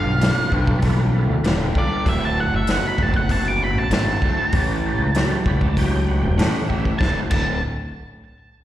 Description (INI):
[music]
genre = blues rock power trio and southern rock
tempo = 97 BPM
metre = 4/4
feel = straight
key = unclear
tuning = A4 = 440 Hz
[part]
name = octave-fuzz lead guitar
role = melody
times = 0.0-7.6 s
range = D5 to D6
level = -25 LUFS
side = right 1 dB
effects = distortion, slapback echo, tape echo
[part]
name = overdriven tonewheel organ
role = sustained chords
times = 0.0-7.3 s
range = C#4 to B5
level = -31 LUFS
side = right 4 dB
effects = chorus vibrato, fast rotary speaker
[part]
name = overdriven semi-hollow guitar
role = riff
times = 0.0-7.6 s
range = D2 to F#3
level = -24 LUFS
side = equal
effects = slapback echo
[part]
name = growling fingered electric bass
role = bass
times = 0.1-7.6 s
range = D1 to A2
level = -21 LUFS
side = equal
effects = overdrive
[part]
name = vintage drum kit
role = drums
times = 0.2-7.5 s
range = crash cymbal, hi-hat, kick drum, snare drum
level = -22 LUFS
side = equal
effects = none
[sound]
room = little or no reverb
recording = live gig heard through the venue's PA, recital hall reverb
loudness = -17 LUFS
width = side -13 dB against mid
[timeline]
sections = 0.0-7.0 A section; 7.0-8.6 B section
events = tonewheel organ fill 5.2-7.0; drum fill 6.7-7.0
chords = 0.0 G7; 2.1 D7; 4.5 A7; 7.0 D9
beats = 0.21 0.83 1.45 | 2.06 2.68 3.30 3.92 | 4.53 5.15 5.77 6.39 | 7.01